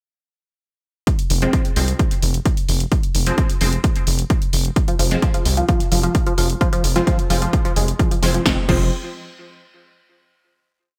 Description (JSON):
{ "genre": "driving peak-time techno", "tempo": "130 BPM", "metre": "4/4", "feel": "straight", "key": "F minor", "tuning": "A4 = 439 Hz", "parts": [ { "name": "electronic kick drum", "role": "drums", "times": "1.1-8.8 s", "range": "none", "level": "-21 LUFS", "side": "equal", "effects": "none" }, { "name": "punchy analog drum machine", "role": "drums", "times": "1.1-8.8 s", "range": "crash cymbal, hi-hat, snare drum", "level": "-27 LUFS", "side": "equal", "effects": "overdrive, gated reverb" }, { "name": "gritty driven synth bass", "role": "bass", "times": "1.3-8.9 s", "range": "F1 to C2", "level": "-22 LUFS", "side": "equal", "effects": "sidechain pumping" }, { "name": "rave stab", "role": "stabs", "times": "1.4-8.9 s", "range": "F3 to C4", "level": "-27 LUFS", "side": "equal", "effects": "chorus, built-in reverb, sidechain pumping, delay" }, { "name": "tight sequenced synth", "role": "riff", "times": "4.9-8.9 s", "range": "F3 to Ab3", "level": "-26 LUFS", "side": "equal", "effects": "chorus, phaser, sidechain pumping, delay" } ], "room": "light reverb, digital ambience", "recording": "bright 1980s-style digital production", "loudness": "-19 LUFS", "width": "mono", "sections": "1.1-8.5 groove; 8.5-10.3 final chord", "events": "none", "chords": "1.1 Fm" }